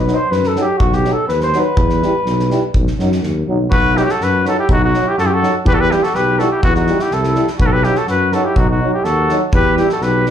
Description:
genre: balkan folk, Balkan brass band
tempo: 124 BPM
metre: 2/4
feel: straight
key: B phrygian dominant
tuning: A4 = 440 Hz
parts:
  - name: warm flugelhorn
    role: second line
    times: 0.0-10.3 s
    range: B3 to D#5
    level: -20 LUFS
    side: left 1 dB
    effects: slapback echo
  - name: mellow tuba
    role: bass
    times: 0.0-10.3 s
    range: B1 to F#2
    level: -18 LUFS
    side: equal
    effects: none
  - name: clear euphonium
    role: accompaniment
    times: 0.1-10.3 s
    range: F#3 to G3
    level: -22 LUFS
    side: right 8 dB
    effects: slapback echo
  - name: mellow French horn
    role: accompaniment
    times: 0.1-10.3 s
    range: D#4 to E4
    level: -24 LUFS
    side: left 10 dB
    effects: slapback echo
  - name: loose indie drum kit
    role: percussion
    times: 0.1-10.3 s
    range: kick drum, snare drum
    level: -20 LUFS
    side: equal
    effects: none
  - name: mellow trumpet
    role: melody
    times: 3.7-10.3 s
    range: F#4 to B4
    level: -17 LUFS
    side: equal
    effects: slapback echo
room: little or no reverb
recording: live gig heard through the venue's PA, club reverb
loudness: -13 LUFS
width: side -9 dB against mid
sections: 0.0-3.7 A section; 3.7-10.3 B section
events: flugelhorn solo 0.0-3.7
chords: 0.0 B; 1.8 Em; 2.7 B; 5.7 Em; 7.6 B; 9.5 Em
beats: 0.32 | 0.81 1.29 | 1.78 2.26 | 2.75 3.23 | 3.72 4.20 | 4.69 5.17 | 5.66 6.14 | 6.63 7.11 | 7.60 8.08 | 8.57 9.05 | 9.54 10.02

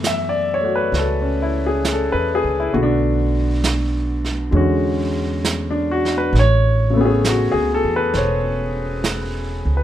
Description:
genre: jazz ballad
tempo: 67 BPM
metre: 4/4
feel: swing 68% on 8ths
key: unclear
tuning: A4 = 441 Hz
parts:
  - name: clear grand piano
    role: accompaniment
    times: 0.0-9.8 s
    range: C#3 to E5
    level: -19 LUFS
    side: left 1 dB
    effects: none
  - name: upright bass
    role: bass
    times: 0.0-9.8 s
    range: E1 to F#2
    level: -21 LUFS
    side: right 1 dB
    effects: none
  - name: vintage brush drum kit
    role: drums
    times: 0.0-9.8 s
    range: brushed snare drum, hi-hat, snare drum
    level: -26 LUFS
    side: right 4 dB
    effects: none
room: little or no reverb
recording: minimal, uncompressed stereo recording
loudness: -16 LUFS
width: side -12 dB against mid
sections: 0.0-9.8 A section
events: none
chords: 0.0 F#m11; 2.7 Bm7; 4.5 E13; 6.3 Amaj9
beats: 0.03 0.94 1.84 | 2.74 3.64 4.54 5.44 | 6.34 7.23 8.13 9.03

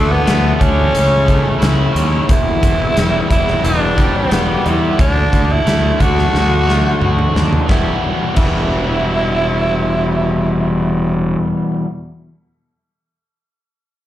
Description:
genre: classic rock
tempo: 89 BPM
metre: 4/4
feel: straight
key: E minor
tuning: A4 = 436 Hz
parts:
  - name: raspy tenor saxophone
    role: melody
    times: 0.0-11.2 s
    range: A3 to F#4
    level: -18 LUFS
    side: right 1 dB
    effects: slapback echo
  - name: fingerpicked twelve-string acoustic guitar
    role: accompaniment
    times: 0.0-2.3 s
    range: C#3 to F#4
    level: -27 LUFS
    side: left 2 dB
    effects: none
  - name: overdriven semi-hollow guitar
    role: riff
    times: 0.0-11.9 s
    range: E2 to G4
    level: -18 LUFS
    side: equal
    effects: slapback echo
  - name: fuzz fingered electric bass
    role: bass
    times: 0.0-11.4 s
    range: E1 to E2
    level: -17 LUFS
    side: equal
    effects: overdrive
  - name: huge arena drum kit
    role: drums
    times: 0.3-8.6 s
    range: crash cymbal, hi-hat, kick drum, snare drum, toms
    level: -18 LUFS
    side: equal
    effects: none
room: light reverb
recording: live gig heard through the venue's PA, club reverb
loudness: -12 LUFS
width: side -13 dB against mid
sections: 0.0-7.7 A section; 7.7-10.4 B section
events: drum fill 6.3-7.7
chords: 0.0 D; 0.9 A/C#; 2.3 Em; 5.0 D; 7.7 Em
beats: 0.27 0.94 1.61 | 2.29 2.96 3.63 4.31 | 4.98 5.66 6.33 7.01 | 7.69 8.37 9.04 9.72

